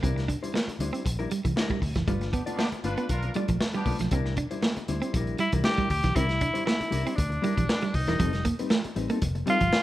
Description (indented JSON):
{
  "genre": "funk",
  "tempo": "118 BPM",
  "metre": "4/4",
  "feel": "straight",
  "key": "unclear",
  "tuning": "A4 = 440 Hz",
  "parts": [
    { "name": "mellow electric guitar", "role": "accompaniment", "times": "0.0-9.8 s", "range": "G3 to D5", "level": "-33 LUFS", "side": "left 4 dB", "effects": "none" },
    { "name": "clean electric guitar", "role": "riff", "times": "0.0-9.7 s", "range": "E3 to D4", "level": "-31 LUFS", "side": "right 4 dB", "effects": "none" },
    { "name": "vintage muted fingered electric bass", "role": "bass", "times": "0.0-9.7 s", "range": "E1 to D2", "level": "-30 LUFS", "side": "equal", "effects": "none" },
    { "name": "crunchy breakbeat drum kit", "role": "drums", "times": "0.0-9.8 s", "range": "hi-hat, kick drum, snare drum", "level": "-29 LUFS", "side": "equal", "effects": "none" },
    { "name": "clear horn section", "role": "second line", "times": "2.3-4.0 s", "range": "B3 to B4", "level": "-36 LUFS", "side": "equal", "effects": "none" },
    { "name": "bright tenor saxophone", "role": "melody", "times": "5.4-9.8 s", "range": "D4 to G4", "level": "-28 LUFS", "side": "left 1 dB", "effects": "none" }
  ],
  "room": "light reverb, studio ambience",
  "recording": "rough home demo mix",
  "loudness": "-24 LUFS",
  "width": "side -15 dB against mid",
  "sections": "0.0-6.2 A section; 6.2-9.8 B section",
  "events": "none",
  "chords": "0.0 C9; 2.1 G9; 4.1 C9; 8.2 F9",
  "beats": "| 0.03 0.54 1.05 1.56 | 2.08 2.59 3.10 3.61 | 4.12 4.63 5.14 5.65 | 6.16 6.67 7.18 7.69 | 8.20 8.71 9.22 9.73"
}